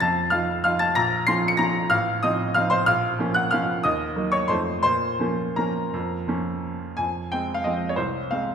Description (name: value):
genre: classical, piano waltz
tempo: 163-201 BPM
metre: 3/4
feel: rubato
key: Bb minor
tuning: A4 = 439 Hz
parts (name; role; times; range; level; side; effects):
- bright baby grand piano; solo; 0.0-8.5 s; A1 to Db7; -21 LUFS; equal; none
room: moderate concert hall reverb, RT60 2.2 s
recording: minimal, uncompressed stereo recording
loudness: -21 LUFS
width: side -7 dB against mid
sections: 0.0-7.0 A section; 7.0-8.5 B section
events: none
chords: 0.0 F7; 1.0 Bbm; 1.9 F7/A; 2.9 Bbm; 3.8 Ebm; 4.5 F7; 4.8 Bbm; 7.0 Fm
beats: | 0.02 0.34 0.66 | 0.96 1.27 1.59 | 1.90 2.22 2.54 | 2.86 3.18 3.52 | 3.84 4.16 4.50 | 4.84 5.21 5.57 | 5.93 6.28 6.64 | 6.99 7.32 7.65 | 7.97 8.30